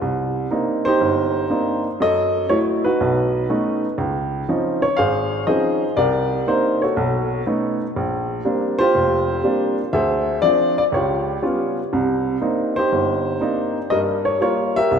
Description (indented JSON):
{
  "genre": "solo jazz",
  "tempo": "121 BPM",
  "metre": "4/4",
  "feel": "swing 69% on 8ths",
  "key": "unclear",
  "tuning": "A4 = 441 Hz",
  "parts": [
    { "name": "warm upright piano", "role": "solo", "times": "0.0-15.0 s", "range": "F1 to F5", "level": "-17 LUFS", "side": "equal", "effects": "none" }
  ],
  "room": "wet lush hall reverb, RT60 2.5 s",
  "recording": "rough home demo mix",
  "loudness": "-17 LUFS",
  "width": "side -7 dB against mid",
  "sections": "0.0-15.0 A section",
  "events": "none",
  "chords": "0.0 Cm9; 2.0 F#m7; 3.0 B9; 4.0 Dbmaj9; 6.0 Cm9; 7.0 B9; 8.0 Bb69; 9.9 Dm7b5; 10.9 Db7#11; 11.9 Cm9; 13.9 Gm7b5"
}